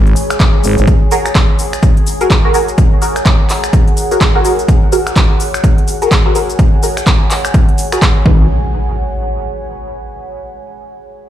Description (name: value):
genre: bass house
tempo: 126 BPM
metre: 4/4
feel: swing 60% on 16ths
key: G# minor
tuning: A4 = 440 Hz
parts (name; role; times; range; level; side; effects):
- growling FM bass; bass; 0.0-0.9, 8.3-8.5 s; G#1; -12 LUFS; equal; overdrive, sidechain pumping
- deep dark ambient pad; texture; 0.0-10.4 s; G#4 to B5; -20 LUFS; equal; chorus, built-in reverb, sidechain pumping
- big-room dance drum kit; drums; 0.1-8.1 s; finger snaps, handclaps, hi-hat, shaker; -18 LUFS; equal; overdrive
- electronic kick drum; drums; 0.4-8.4 s; none; -11 LUFS; equal; overdrive
- band-passed chord stab; stabs; 1.1-8.4 s; D#4 to B4; -17 LUFS; equal; phaser, analog chorus, sidechain pumping, dub echo
- impact; sound effects; 8.3-10.2 s; none; -18 LUFS; equal; none
room: little or no reverb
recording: played on a big sound system in a bare room, large studio reverb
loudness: -9 LUFS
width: side -12 dB against mid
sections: 0.0-8.5 A section; 8.5-10.4 B section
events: filter sweep on synth stab 0.0-8.5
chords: 0.0 G#m; 0.9 F#add9; 8.3 G#m